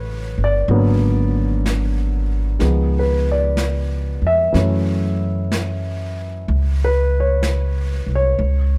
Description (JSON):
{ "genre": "jazz ballad", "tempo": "63 BPM", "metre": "4/4", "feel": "swing 66% on 8ths", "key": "unclear", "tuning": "A4 = 437 Hz", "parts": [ { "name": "warm concert grand piano", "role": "accompaniment", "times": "0.0-8.8 s", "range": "C#3 to E5", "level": "-23 LUFS", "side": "equal", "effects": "none" }, { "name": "upright bass", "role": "bass", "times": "0.0-8.8 s", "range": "G1 to F#2", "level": "-21 LUFS", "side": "equal", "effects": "none" }, { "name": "jazz brush drum kit", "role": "drums", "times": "0.7-8.8 s", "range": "brushed snare drum, hi-hat, snare drum", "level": "-32 LUFS", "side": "equal", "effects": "none" } ], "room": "light reverb", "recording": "dark, warm production", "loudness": "-19 LUFS", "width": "mono", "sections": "0.0-8.8 A section", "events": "none", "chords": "0.0 Dmaj7; 0.7 G#m7b5; 2.6 C#7; 4.6 F#m7", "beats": "| 0.70 1.65 2.62 3.58 | 4.55 5.51 6.48 7.43 | 8.39" }